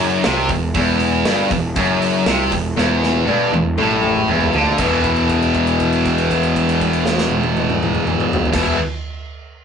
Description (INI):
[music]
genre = heavy metal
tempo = 119 BPM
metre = 4/4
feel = straight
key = E minor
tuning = A4 = 441 Hz
[part]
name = distorted electric guitar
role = riff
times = 0.0-8.8 s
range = E2 to E3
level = -18 LUFS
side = left 5 dB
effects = overdrive
[part]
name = heavy high-gain guitar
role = riff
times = 0.0-8.8 s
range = E2 to E3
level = -20 LUFS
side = right 6 dB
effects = distortion
[part]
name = scooped high-gain guitar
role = riff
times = 0.0-0.7 s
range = E2 to C3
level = -26 LUFS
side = right 1 dB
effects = distortion
[part]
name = fuzz picked electric bass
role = bass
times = 0.0-8.7 s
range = E1 to D2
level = -23 LUFS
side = right 1 dB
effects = overdrive
[part]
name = big rock drum kit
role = drums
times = 0.2-8.7 s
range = crash cymbal, hi-hat, kick drum, snare drum, toms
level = -23 LUFS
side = right 1 dB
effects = none
[sound]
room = moderate studio reverb, RT60 0.6 s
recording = rough rehearsal-room recording, tube saturation, nothing above 10.4 kHz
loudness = -14 LUFS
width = side -7 dB against mid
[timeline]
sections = 0.0-4.8 A section; 4.8-8.8 B section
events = drum fill 2.8-4.8; held note 4.8-8.5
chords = 0.0 Em; 4.8 E5